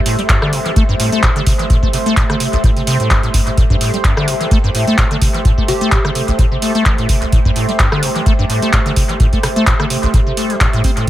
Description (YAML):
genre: acid house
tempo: 128 BPM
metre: 4/4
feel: swing 55% on 16ths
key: A minor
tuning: A4 = 440 Hz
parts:
  - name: deep dark ambient pad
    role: texture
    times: 0.0-11.1 s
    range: A3 to E5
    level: -21 LUFS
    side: right 1 dB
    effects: chorus, built-in reverb, sidechain pumping
  - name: acid bass, square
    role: riff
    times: 0.1-11.1 s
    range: A1 to C4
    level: -17 LUFS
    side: equal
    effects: tube saturation, wide subtle chorus, dub echo
  - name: electro analog drum machine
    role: drums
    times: 0.1-11.1 s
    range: handclaps, hi-hat, rim click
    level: -19 LUFS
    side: equal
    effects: dub echo
  - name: electronic kick drum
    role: drums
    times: 0.3-11.1 s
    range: none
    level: -14 LUFS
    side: equal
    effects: none
  - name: plucky unison lead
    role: melody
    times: 5.7-6.0 s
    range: G4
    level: -24 LUFS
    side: left 2 dB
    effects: dub echo
room: light reverb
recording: echo-heavy mix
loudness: -12 LUFS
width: side -14 dB against mid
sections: 0.0-11.1 A section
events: none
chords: 0.0 Am7